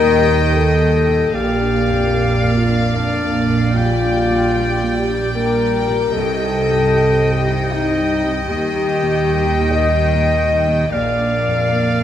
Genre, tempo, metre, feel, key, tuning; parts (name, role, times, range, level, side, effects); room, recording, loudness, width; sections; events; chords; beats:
cinematic, emotional film score for orchestra; 75 BPM; 3/4; rubato; A4 = 439 Hz
warm symphonic violin section; melody; 0.0-12.0 s; F5 to G5; -27 LUFS; left 2 dB
bright clarinet; second line; 0.0-12.0 s; D5 to Eb5; -26 LUFS; left 1 dB
clear oboe; second line; 0.0-12.0 s; F5 to G5; -27 LUFS; right 1 dB
warm symphonic violin section; second line; 0.0-12.0 s; D5 to Eb5; -28 LUFS; left 1 dB
dark symphonic viola section; accompaniment; 0.0-12.0 s; G3 to Bb3; -28 LUFS; right 4 dB
warm concert grand piano; accompaniment; 0.0-12.0 s; Bb1 to Eb4; -26 LUFS; left 3 dB
mellow French horn section; sustained chords; 0.0-12.0 s; D4 to Eb5; -18 LUFS; left 4 dB
warm symphonic cello section; bass; 0.0-12.0 s; Bb2 to Eb3; -23 LUFS; right 3 dB
warm symphonic double bass section; bass; 0.0-12.0 s; Bb1 to Eb2; -21 LUFS; right 4 dB
moderate scoring stage reverb, RT60 1.7 s; -14 LUFS; side -10 dB against mid
0.0-12.0 A section
0.0 Eb; 1.4 Bb; 6.2 Cm; 8.5 Eb; 10.9 Bb
0.55 | 1.35 2.16 2.96 | 3.76 4.56 5.35 | 6.15 6.95 7.72 | 8.50 9.31 10.14 | 10.94 11.74